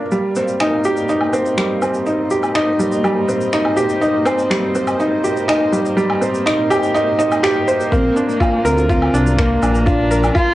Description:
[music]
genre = piano and strings electronica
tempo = 123 BPM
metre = 4/4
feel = straight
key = unclear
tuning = A4 = 437 Hz
[part]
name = granular cloud pad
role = sustained chords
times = 0.0-10.5 s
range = Bb3 to Bb5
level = -26 LUFS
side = equal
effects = built-in reverb, sidechain pumping, cassette tape
[part]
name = felt-muted upright piano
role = riff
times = 0.0-10.5 s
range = G3 to C5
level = -16 LUFS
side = equal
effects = cassette tape, analog delay
[part]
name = electronic shaker, finger snaps and woodblock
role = drums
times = 0.1-10.5 s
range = none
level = -24 LUFS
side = equal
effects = cassette tape
[part]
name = dark cello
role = melody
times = 7.9-10.5 s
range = Bb3 to F4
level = -19 LUFS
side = equal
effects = cassette tape
[part]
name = dark detuned saw bass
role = bass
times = 7.9-10.3 s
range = Bb1 to D2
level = -18 LUFS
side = equal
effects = sidechain pumping
[part]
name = electronic kick drum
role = drums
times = 7.9-10.5 s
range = none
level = -18 LUFS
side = equal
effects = overdrive, cassette tape
[sound]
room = moderate studio reverb, RT60 0.5 s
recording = home recording on cassette, nothing above 10.8 kHz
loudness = -14 LUFS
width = side -15 dB against mid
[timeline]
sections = 0.0-7.9 A section; 7.9-10.5 B section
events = build-up 0.0-7.9; filter sweep on ambient pad 0.0-7.9; drop 7.9-10.5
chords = 0.1 Cm; 7.9 Bb

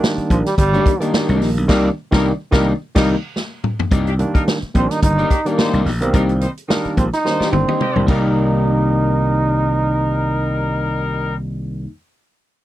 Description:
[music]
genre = funk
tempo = 108 BPM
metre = 4/4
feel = swing 56% on 16ths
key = C minor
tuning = A4 = 438 Hz
[part]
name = barky tine electric piano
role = stabs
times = 0.0-11.9 s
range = Eb3 to Eb4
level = -22 LUFS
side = right 2 dB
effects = overdrive
[part]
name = vintage drum kit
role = drums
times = 0.0-8.2 s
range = crash cymbal, hi-hat, kick drum, snare drum, toms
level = -19 LUFS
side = equal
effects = none
[part]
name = slap bass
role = bass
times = 0.2-11.9 s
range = G1 to C2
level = -18 LUFS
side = equal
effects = none
[part]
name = clear trombone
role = melody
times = 0.3-11.3 s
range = Eb3 to Eb4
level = -20 LUFS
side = right 2 dB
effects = none
[part]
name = electric guitar at the edge of break-up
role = accompaniment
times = 0.7-11.9 s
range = Bb3 to Eb5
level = -24 LUFS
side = left 6 dB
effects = none
[part]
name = clear horn section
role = second line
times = 1.7-11.3 s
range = Eb3 to Eb5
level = -26 LUFS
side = left 4 dB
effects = none
[sound]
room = little or no reverb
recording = dry, close 1970s-style studio recording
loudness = -15 LUFS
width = side -14 dB against mid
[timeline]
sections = 0.0-3.9 A section; 3.9-8.4 B section; 8.4-10.6 C section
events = band accent 1.7-3.9; drum fill 3.4-3.9, 7.2-8.4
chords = 0.0 Cm9

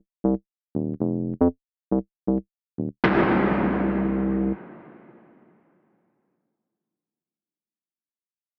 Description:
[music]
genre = deep house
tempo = 118 BPM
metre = 4/4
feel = swing 59% on 16ths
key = unclear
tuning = A4 = 440 Hz
[part]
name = round analog bass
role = bass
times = 0.2-4.5 s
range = Eb1 to F2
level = -27 LUFS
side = equal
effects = none
[part]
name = impact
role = sound effects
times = 3.0-7.5 s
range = none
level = -29 LUFS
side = equal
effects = none
[sound]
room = light reverb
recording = AM radio sound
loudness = -25 LUFS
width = mono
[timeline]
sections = 0.0-3.0 A section; 3.0-7.1 B section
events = none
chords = none

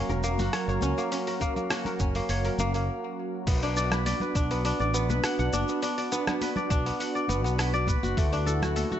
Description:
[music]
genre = organic downtempo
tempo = 102 BPM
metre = 4/4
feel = straight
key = unclear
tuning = A4 = 439 Hz
[part]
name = warm analog pad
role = sustained chords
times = 0.0-9.0 s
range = D3 to A#4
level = -32 LUFS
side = right 2 dB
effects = chorus, sidechain pumping
[part]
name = kora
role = arpeggios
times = 0.0-9.0 s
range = A3 to F#5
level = -30 LUFS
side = left 1 dB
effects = ping-pong delay
[part]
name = mellow fretless electric bass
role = bass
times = 0.1-8.8 s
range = E1 to D2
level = -29 LUFS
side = equal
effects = tube saturation, lush chorus, sidechain pumping
[part]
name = dusty soul sampler-style drum kit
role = drums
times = 0.1-9.0 s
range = crash cymbal, hi-hat, rim click, shaker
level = -35 LUFS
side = equal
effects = none
[part]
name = bongos and congas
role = percussion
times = 0.1-9.0 s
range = none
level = -36 LUFS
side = left 3 dB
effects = none
[part]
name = electronic kick drum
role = drums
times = 1.4-8.3 s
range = none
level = -28 LUFS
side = equal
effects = none
[sound]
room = light reverb, digital ambience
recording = nothing above 8.0 kHz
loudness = -25 LUFS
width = side -10 dB against mid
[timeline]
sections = 0.0-3.5 A section; 3.5-9.0 B section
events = break 2.9-3.5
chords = 0.0 F#; 3.5 Bm; 8.2 Dadd9

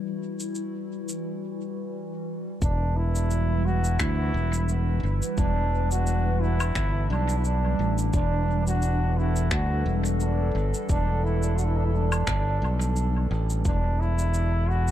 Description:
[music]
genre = ambient dub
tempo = 87 BPM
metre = 4/4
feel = swing 56% on 16ths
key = E minor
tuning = A4 = 440 Hz
[part]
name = warbly tape-like pad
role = sustained chords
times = 0.0-14.9 s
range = D3 to B4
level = -32 LUFS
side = equal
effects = chorus, built-in reverb, phaser
[part]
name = electronic cabasa, finger snaps and woodblock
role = drums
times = 0.4-14.9 s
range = none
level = -35 LUFS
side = left 1 dB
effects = dub echo
[part]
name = clear trombone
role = melody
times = 2.6-14.9 s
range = D4 to F#4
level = -30 LUFS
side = right 2 dB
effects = dub echo
[part]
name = modern bright fingered electric bass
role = bass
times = 2.6-14.9 s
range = E1 to D2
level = -24 LUFS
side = equal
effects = tube saturation
[part]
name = electronic kick drum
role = drums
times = 2.6-13.8 s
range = none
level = -28 LUFS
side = equal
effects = none
[sound]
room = light reverb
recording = none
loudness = -23 LUFS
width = side -12 dB against mid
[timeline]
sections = 0.0-2.6 A section; 2.6-14.9 B section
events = none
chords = 0.0 Emadd9; 2.6 Em9; 13.7 Bm/E

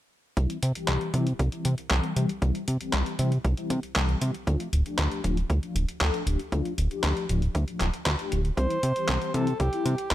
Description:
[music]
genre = italo disco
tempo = 117 BPM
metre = 4/4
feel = straight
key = unclear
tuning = A4 = 440 Hz
[part]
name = mellow synth brass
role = stabs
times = 0.4-10.1 s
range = E3 to A4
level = -32 LUFS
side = left 3 dB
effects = chorus, digital delay
[part]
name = fat analog bass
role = bass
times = 0.4-10.1 s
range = D1 to C3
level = -26 LUFS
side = equal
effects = none
[part]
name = detuned 8-bit digital drum machine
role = drums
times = 0.4-10.1 s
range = handclaps, hi-hat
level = -31 LUFS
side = equal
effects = overdrive
[part]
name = electronic kick drum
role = drums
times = 0.4-10.1 s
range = none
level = -33 LUFS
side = equal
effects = overdrive, high-pass filter on kick
[part]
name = breathy alto saxophone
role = melody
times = 8.6-10.1 s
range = G4 to C5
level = -29 LUFS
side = right 1 dB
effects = digital delay
[sound]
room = little or no reverb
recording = none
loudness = -24 LUFS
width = side -14 dB against mid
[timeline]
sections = 0.4-10.1 A section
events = none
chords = 0.4 C; 4.5 Dm; 8.6 C

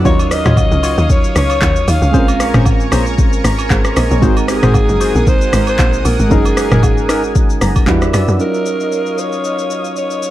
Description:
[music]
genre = amapiano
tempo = 115 BPM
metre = 4/4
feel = swing 55% on 16ths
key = Eb dorian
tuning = A4 = 440 Hz
[part]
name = soft electric-piano-like synth keys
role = accompaniment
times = 0.0-10.3 s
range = Gb3 to Bb5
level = -20 LUFS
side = right 3 dB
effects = chorus
[part]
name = lush unison pad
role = sustained chords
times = 0.0-10.3 s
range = Bb4 to E6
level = -23 LUFS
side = equal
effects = chorus, sidechain pumping
[part]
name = percussive organ stab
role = stabs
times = 0.0-7.2 s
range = Db4 to Db5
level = -23 LUFS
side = left 4 dB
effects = chorus, tape echo
[part]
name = tight log drum bass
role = bass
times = 0.0-8.4 s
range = Gb1 to F#2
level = -16 LUFS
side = equal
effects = none
[part]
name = breathy alto saxophone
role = melody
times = 0.1-10.3 s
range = Ab4 to F5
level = -19 LUFS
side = equal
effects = tape echo
[part]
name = afro-pop drum kit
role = drums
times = 0.1-10.3 s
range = handclaps, hi-hat, kick drum, rim click, shaker, toms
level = -14 LUFS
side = equal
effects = overdrive
[part]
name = agogo bells and woodblock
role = percussion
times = 0.2-8.3 s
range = none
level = -28 LUFS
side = right 6 dB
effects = none
[sound]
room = little or no reverb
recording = dark, warm production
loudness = -11 LUFS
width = side -14 dB against mid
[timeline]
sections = 0.0-8.4 A section; 8.4-10.3 B section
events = drop 0.0-8.4; synth keys fill 7.4-8.4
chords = 0.1 Ebm9; 2.1 Bbm9; 4.2 Ab7; 6.3 Gb69; 7.9 Em9; 8.4 Ebm9

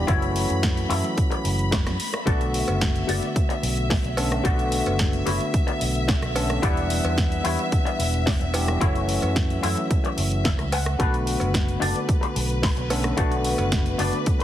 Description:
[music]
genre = nu-disco, nu disco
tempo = 110 BPM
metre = 4/4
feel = straight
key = B minor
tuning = A4 = 440 Hz
[part]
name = overdriven tine electric piano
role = accompaniment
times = 0.0-14.4 s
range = D3 to F#5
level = -27 LUFS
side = equal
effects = sidechain pumping, slapback echo
[part]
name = clear studio violin section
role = sustained chords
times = 0.0-14.4 s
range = B4 to B5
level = -32 LUFS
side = left 1 dB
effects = sidechain pumping
[part]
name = fingered electric bass with an envelope filter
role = bass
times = 0.0-14.1 s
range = E1 to F#2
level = -26 LUFS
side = equal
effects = none
[part]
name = electric guitar with an envelope filter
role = riff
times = 0.1-14.4 s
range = D4 to F#5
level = -30 LUFS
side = left 4 dB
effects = lush chorus, slapback echo
[part]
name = electronic kick drum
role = drums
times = 0.1-14.4 s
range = none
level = -23 LUFS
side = equal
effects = none
[part]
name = house drum kit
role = drums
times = 0.1-14.4 s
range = hi-hat, rim click, snare drum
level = -30 LUFS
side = equal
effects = none
[part]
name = cowbell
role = percussion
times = 2.7-13.7 s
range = none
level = -33 LUFS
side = right 1 dB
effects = none
[sound]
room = light reverb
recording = heavily compressed radio sound, multiband compression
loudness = -20 LUFS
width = side -12 dB against mid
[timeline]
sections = 0.0-14.4 A section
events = clean electric guitar fill 10.2-11.0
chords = 0.1 F#m7; 2.3 Bm7; 6.6 Em7; 8.8 F#m7; 11.0 Bm7

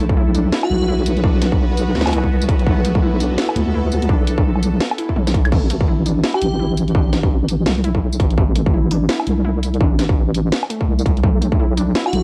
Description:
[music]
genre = half-time drum and bass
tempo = 168 BPM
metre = 4/4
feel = swing 60% on 16ths, half-time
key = A dorian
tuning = A4 = 439 Hz
[part]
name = bowed-like drone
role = sustained chords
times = 0.0-5.5 s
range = B3 to B4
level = -30 LUFS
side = equal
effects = built-in reverb, phaser, sidechain pumping, cassette tape
[part]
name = warbly dusty pluck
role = arpeggios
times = 0.0-12.1 s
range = A3 to E4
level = -28 LUFS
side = equal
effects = chorus, cassette tape, tape echo
[part]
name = deep soft wobble bass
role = bass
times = 0.0-12.2 s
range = A1 to D2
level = -20 LUFS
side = equal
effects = chorus
[part]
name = electronic kick drum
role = drums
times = 0.1-11.6 s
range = none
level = -20 LUFS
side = equal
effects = distortion, cassette tape
[part]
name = drum and bass drum kit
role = drums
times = 0.3-12.2 s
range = crash cymbal, hi-hat, snare drum, tambourine, toms, woodblock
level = -24 LUFS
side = equal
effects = cassette tape
[part]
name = airy dreamy lead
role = melody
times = 0.6-1.0, 6.3-6.7, 12.1-12.2 s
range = F#4 to G4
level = -27 LUFS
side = equal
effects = chorus, cassette tape, tape echo
[sound]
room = light reverb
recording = home recording on cassette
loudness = -17 LUFS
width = mono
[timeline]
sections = 0.0-5.5 A section; 5.5-12.2 A section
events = drop 0.0-5.5, 5.5-12.2; drum fill 5.2-5.5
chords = 0.0 Bm; 5.5 Am; 11.2 Bm

